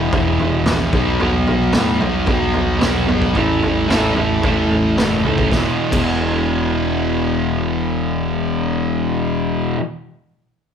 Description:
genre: garage rock duo or trio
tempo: 111 BPM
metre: 4/4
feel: straight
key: unclear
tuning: A4 = 436 Hz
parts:
  - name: fuzz guitar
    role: riff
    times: 0.0-9.8 s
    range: E2 to B3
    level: -17 LUFS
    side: equal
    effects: distortion
  - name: fuzz fingered electric bass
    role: bass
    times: 0.0-9.8 s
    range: E1 to A2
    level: -23 LUFS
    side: equal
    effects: overdrive
  - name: raw garage drum kit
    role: drums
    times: 0.1-6.1 s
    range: crash cymbal, kick drum, snare drum, toms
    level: -21 LUFS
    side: equal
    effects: none
room: light reverb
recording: band playing live in one room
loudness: -15 LUFS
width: side -7 dB against mid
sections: 0.0-5.5 A section; 5.5-9.9 B section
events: none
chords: 0.0 E5; 0.9 B5; 3.4 A; 5.5 E5

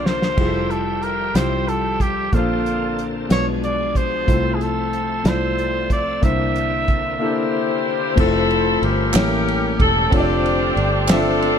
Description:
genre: slow gospel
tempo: 62 BPM (dotted quarters)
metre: 6/8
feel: straight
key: F major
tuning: A4 = 440 Hz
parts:
  - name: clear trumpet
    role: melody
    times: 0.0-7.9 s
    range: F4 to E5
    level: -23 LUFS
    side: right 1 dB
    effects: none
  - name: warm concert grand piano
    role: accompaniment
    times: 0.0-11.6 s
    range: A2 to E5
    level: -23 LUFS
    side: left 3 dB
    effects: none
  - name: bright tonewheel organ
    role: sustained chords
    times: 0.0-11.6 s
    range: B2 to E5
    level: -29 LUFS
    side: right 3 dB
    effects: chorus vibrato, slow rotary speaker
  - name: fingered electric bass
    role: bass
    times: 0.0-11.6 s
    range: E1 to C2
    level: -25 LUFS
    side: right 1 dB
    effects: none
  - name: warm soul drum kit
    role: drums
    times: 0.1-11.6 s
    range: crash cymbal, hi-hat, kick drum, ride cymbal, snare drum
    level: -20 LUFS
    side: equal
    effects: none
  - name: warm saxophone section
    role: melody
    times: 7.2-11.6 s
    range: C4 to C5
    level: -20 LUFS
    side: left 2 dB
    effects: none
  - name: group handclap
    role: percussion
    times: 9.1-11.4 s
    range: none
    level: -27 LUFS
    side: right 6 dB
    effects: none
room: light reverb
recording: none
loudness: -17 LUFS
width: side -8 dB against mid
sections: 0.0-8.2 A section; 8.2-11.6 B section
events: drum fill 0.0-0.4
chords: 0.4 Fmaj9; 2.3 Bbmaj9; 3.3 Bdim7; 4.3 Fmaj7/C; 6.2 C9; 8.2 Fmaj7; 9.2 A7b9; 10.1 Dm7/F

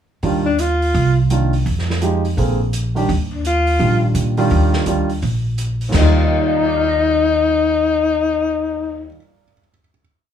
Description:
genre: jazz, small-group swing and bop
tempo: 168 BPM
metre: 4/4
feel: swing 64% on 8ths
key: Eb major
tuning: A4 = 438 Hz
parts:
  - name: warm baby grand piano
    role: accompaniment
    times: 0.2-10.0 s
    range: Eb2 to Bb6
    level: -21 LUFS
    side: right 4 dB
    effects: none
  - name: upright bass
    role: bass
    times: 0.2-9.1 s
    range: Bb1 to Bb2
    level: -19 LUFS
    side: equal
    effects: none
  - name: vintage drum kit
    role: drums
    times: 0.2-6.0 s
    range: crash cymbal, hi-hat, kick drum, snare drum, toms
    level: -26 LUFS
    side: equal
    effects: none
  - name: breathy alto saxophone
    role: melody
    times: 0.5-1.2, 3.3-9.1 s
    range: D4 to F4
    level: -16 LUFS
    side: left 4 dB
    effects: none
room: little or no reverb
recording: studio ambience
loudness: -15 LUFS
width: side -8 dB against mid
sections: 0.2-5.9 A section; 5.9-8.8 final chord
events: none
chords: 0.2 Ebmaj9; 0.9 Cm11; 1.7 Fm9; 2.4 Bb9; 3.1 Ebmaj9

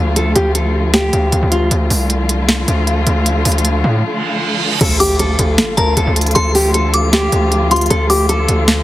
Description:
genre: hip hop, trap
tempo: 155 BPM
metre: 4/4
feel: half-time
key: D minor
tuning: A4 = 438 Hz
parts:
  - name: dark studio string section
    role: sustained chords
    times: 0.0-8.8 s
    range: D3 to F4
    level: -20 LUFS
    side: left 1 dB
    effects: none
  - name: distorted 808-style bass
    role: bass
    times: 0.0-8.8 s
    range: C2 to A2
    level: -15 LUFS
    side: equal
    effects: distortion
  - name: nylon-string guitar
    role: melody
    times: 0.2-1.7, 4.8-8.8 s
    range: F4 to Bb4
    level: -17 LUFS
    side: equal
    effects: digital delay
  - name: trap drum kit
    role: drums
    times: 0.2-8.8 s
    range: crash cymbal, hi-hat, snare drum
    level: -17 LUFS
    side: equal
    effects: overdrive
  - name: reverse cymbal and impact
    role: sound effects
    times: 4.1-6.4 s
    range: none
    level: -22 LUFS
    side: right 3 dB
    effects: none
  - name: glassy synth bell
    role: second line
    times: 5.0-8.3 s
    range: A5 to D6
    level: -20 LUFS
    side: left 2 dB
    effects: chorus, phaser, digital delay
room: light reverb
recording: heavily compressed radio sound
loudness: -12 LUFS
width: side -15 dB against mid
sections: 0.0-4.8 A section; 4.8-8.8 B section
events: break 4.0-4.8; reverse cymbal 4.1-4.8; impact 4.8-6.4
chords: 0.0 Dm

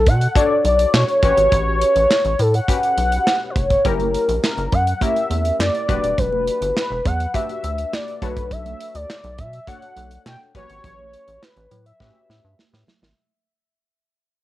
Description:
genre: early-eighties boogie funk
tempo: 103 BPM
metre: 4/4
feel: straight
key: unclear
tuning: A4 = 440 Hz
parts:
  - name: warm velvety synth lead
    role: melody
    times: 0.0-12.7 s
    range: A4 to G5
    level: -19 LUFS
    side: equal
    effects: chorus, plate reverb
  - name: rubbery square bass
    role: bass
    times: 0.0-13.1 s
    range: D#1 to B2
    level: -22 LUFS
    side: equal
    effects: none
  - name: modern studio drum kit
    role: drums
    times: 0.1-13.2 s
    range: handclaps, hi-hat, kick drum, snare drum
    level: -22 LUFS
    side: right 1 dB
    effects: cassette tape
  - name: funky polysynth comp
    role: accompaniment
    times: 0.4-12.9 s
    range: C#4 to C#5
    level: -28 LUFS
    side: left 8 dB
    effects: chorus, cassette tape
  - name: congas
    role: percussion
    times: 3.8-13.0 s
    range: none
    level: -33 LUFS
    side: right 10 dB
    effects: none
room: light reverb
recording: home recording on cassette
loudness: -16 LUFS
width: side -15 dB against mid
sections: 0.0-13.2 A section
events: fade-out 0.0-13.2; drum fill 12.0-13.2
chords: 0.0 Bm9; 1.2 A13; 3.9 F#7b9; 5.9 Em9; 8.2 Bm9; 10.5 A13

